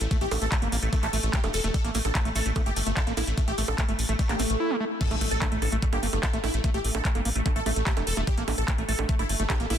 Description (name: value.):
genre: psychedelic trance.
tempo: 147 BPM.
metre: 4/4.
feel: straight.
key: unclear.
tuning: A4 = 441 Hz.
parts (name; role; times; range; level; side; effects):
supersaw stab; melody; 0.0-9.8 s; A3 to A4; -32 LUFS; equal; phaser, sidechain pumping, ping-pong delay.
round analog bass; bass; 0.0-9.8 s; E1 to A1; -28 LUFS; equal; none.
drum and bass drum kit; drums; 0.0-9.8 s; bongos, crash cymbal, handclaps, hi-hat; -31 LUFS; right 2 dB; none.
maracas; percussion; 0.0-4.6 s; none; -39 LUFS; left 2 dB; none.
screaming distorted acid line; riff; 0.1-9.7 s; G3 to E4; -34 LUFS; right 1 dB; distortion, chorus, auto-pan, sidechain pumping, ping-pong delay.
electronic kick drum; drums; 0.1-9.6 s; none; -26 LUFS; equal; none.
swell and impact; sound effects; 4.3-6.6 s; none; -33 LUFS; equal; none.
room: light reverb.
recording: dense, heavily limited modern master.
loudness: -24 LUFS.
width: side -9 dB against mid.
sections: 0.0-5.0 A section; 5.0-9.8 B section.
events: swell 4.3-5.0; drop 5.0-9.8; impact 5.0-6.6.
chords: 0.0 A5.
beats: | 0.11 0.52 0.93 1.33 | 1.74 2.15 2.56 2.97 | 3.38 3.78 4.19 4.60 | 5.01 5.42 5.83 6.23 | 6.64 7.05 7.46 7.87 | 8.27 8.68 9.09 9.50.